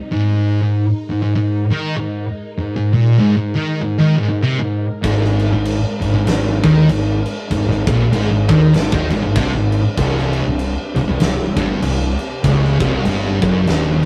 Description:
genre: stoner and doom metal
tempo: 97 BPM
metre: 4/4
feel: swing 59% on 8ths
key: unclear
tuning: A4 = 439 Hz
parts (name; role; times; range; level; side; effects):
- string machine, violas; sustained chords; 0.0-14.1 s; C3 to Bb4; -30 LUFS; equal; phaser, ensemble chorus
- thick fuzz guitar; riff; 0.1-14.1 s; C2 to Eb3; -22 LUFS; equal; distortion
- thick fuzz guitar; riff; 0.1-14.1 s; C2 to Eb3; -20 LUFS; equal; distortion
- fuzz fingered electric bass; bass; 5.0-14.1 s; C1 to Eb2; -26 LUFS; equal; overdrive
- big rock drum kit; drums; 5.0-14.1 s; crash cymbal, kick drum, snare drum; -24 LUFS; equal; none
room: moderate studio reverb, RT60 0.6 s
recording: rough rehearsal-room recording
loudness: -17 LUFS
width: mono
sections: 0.0-14.1 A section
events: none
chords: 0.1 Ab5; 10.0 Cm

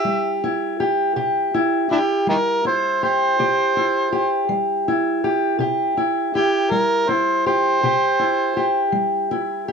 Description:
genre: acoustic country blues, solo or duo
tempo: 54 BPM (dotted quarters)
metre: 12/8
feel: straight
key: C major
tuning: A4 = 444 Hz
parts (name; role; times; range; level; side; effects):
- overdriven harmonica; melody; 0.0-8.9 s; D4 to E5; -19 LUFS; right 1 dB; none
- fingerpicked steel-string acoustic guitar; accompaniment; 0.0-9.7 s; C3 to G4; -20 LUFS; left 1 dB; none
room: moderate studio reverb, RT60 0.5 s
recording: dark, warm production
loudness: -17 LUFS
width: side -5 dB against mid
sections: 0.0-9.7 A section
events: none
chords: 0.0 C

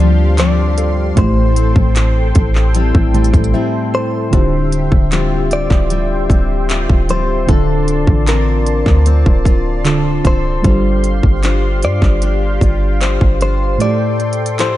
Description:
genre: contemporary R&B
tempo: 76 BPM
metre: 4/4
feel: straight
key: D minor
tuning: A4 = 439 Hz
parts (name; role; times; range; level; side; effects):
- direct-recorded clean electric guitar; melody; 0.0-14.8 s; A4 to D5; -22 LUFS; left 1 dB; ping-pong delay
- mellow FM electric piano; accompaniment; 0.0-14.8 s; A2 to A5; -20 LUFS; right 2 dB; chorus, phaser
- warm analog pad; sustained chords; 0.0-14.8 s; G4 to C6; -24 LUFS; left 1 dB; chorus
- picked steel-string acoustic guitar; arpeggios; 0.0-14.8 s; G2 to C5; -21 LUFS; left 6 dB; none
- clean 808-style bass; bass; 0.0-13.8 s; C1 to G2; -15 LUFS; equal; none
- mallet-like synth pluck; texture; 0.0-4.7 s; A4 to C5; -31 LUFS; left 3 dB; none
- trap drum kit; drums; 0.4-14.8 s; handclaps, hi-hat, kick drum; -15 LUFS; equal; none
room: little or no reverb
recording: dark, warm production, nothing above 11.0 kHz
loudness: -11 LUFS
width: side -14 dB against mid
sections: 0.0-4.3 A section; 4.3-14.8 B section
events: FM electric piano fill 2.7-4.3; break 3.5-4.3; kick muted 13.8-14.8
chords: 0.0 G7sus4; 1.2 Am7; 4.3 Dm11; 7.5 Bbmaj9/D; 10.6 G7sus4; 13.8 Am7

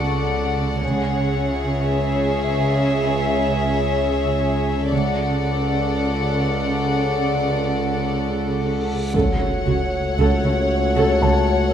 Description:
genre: cinematic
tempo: 58 BPM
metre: 4/4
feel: straight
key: unclear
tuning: A4 = 440 Hz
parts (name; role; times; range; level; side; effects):
- warm chamber violin section; melody; 0.0-11.7 s; E5 to F#5; -28 LUFS; left 3 dB; none
- warm chamber violin section; second line; 0.0-11.7 s; G#4 to D5; -25 LUFS; left 2 dB; none
- glass harmonica; sustained chords; 0.0-11.7 s; G#4 to F#5; -28 LUFS; equal; none
- warm chamber cello section; bass; 0.0-11.3 s; C#3; -25 LUFS; right 2 dB; none
- analog drone; drone; 0.0-11.7 s; C#2; -24 LUFS; equal; chorus
- felt-muted upright piano; texture; 0.0-4.9, 11.2-11.7 s; D5 to C#6; -30 LUFS; left 3 dB; none
- dark chamber double bass section; bass; 0.8-11.3 s; C#2; -25 LUFS; right 3 dB; none
- reverse cymbal and impact; sound effects; 8.8-11.7 s; none; -28 LUFS; equal; none
- warm chamber viola section; accompaniment; 9.1-11.3 s; F#4 to A4; -24 LUFS; right 2 dB; none
- mellow French horn section; sustained chords; 9.2-11.7 s; A3 to F#4; -25 LUFS; left 4 dB; none
room: wet scoring stage reverb, RT60 1.8 s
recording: dark, warm production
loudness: -18 LUFS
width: side -9 dB against mid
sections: 0.0-9.1 A section; 9.1-11.7 B section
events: reverse cymbal 8.8; impact 9.1-11.7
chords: 0.0 D/C#; 0.8 C#m; 4.9 D/C#; 9.1 F#m/C#

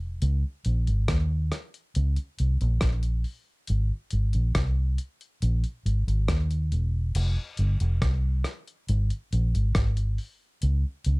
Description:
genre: roots reggae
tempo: 69 BPM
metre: 4/4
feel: straight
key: unclear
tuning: A4 = 437 Hz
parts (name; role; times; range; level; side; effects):
- vintage muted fingered electric bass; bass; 0.0-11.2 s; Fb1 to Eb2; -23 LUFS; equal; none
- dusty soul sampler-style drum kit; drums; 0.2-11.2 s; crash cymbal, hi-hat, kick drum, rim click; -30 LUFS; equal; none
room: little or no reverb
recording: dark, warm production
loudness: -24 LUFS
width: side -28 dB against mid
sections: 0.0-7.2 A section; 7.2-11.2 B section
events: none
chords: none

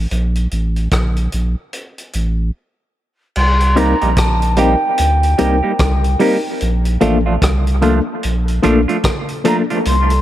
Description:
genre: dub reggae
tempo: 74 BPM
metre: 4/4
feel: swing 61% on 16ths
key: C dorian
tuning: A4 = 441 Hz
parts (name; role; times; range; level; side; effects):
- warm sub bass; bass; 0.0-10.2 s; A1 to D2; -15 LUFS; equal; none
- vintage drum kit; drums; 0.1-10.2 s; crash cymbal, hi-hat, kick drum, rim click; -21 LUFS; equal; none
- mellow hollow silver concert flute; melody; 3.4-10.2 s; G5 to C6; -19 LUFS; equal; dub echo
- clean electric guitar; accompaniment; 3.8-9.8 s; F3 to G4; -20 LUFS; right 4 dB; phaser, dub echo
- reed electric piano; stabs; 3.8-9.6 s; Bb3 to Bb4; -19 LUFS; left 4 dB; fast tremolo, dub echo
room: light reverb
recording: echo-heavy mix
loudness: -13 LUFS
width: side -13 dB against mid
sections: 0.0-3.4 A section; 3.4-10.2 B section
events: break 0.0-3.4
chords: 0.1 N.C.; 3.4 Cm7; 6.6 Bbmaj7

